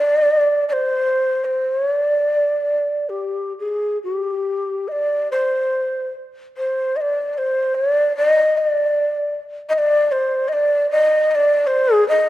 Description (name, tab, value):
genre	japanese traditional, Japanese chamber music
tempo	66-77 BPM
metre	4/4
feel	rubato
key	unclear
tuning	A4 = 439 Hz
part	breathy mellow shakuhachi	solo	0.0-12.3 s	G4 to Eb5	-16 LUFS	equal	none
room	moderate concert hall reverb, RT60 1.8 s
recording	none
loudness	-16 LUFS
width	side -15 dB against mid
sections	0.0-4.9 A section; 4.9-12.3 B section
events	none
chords	none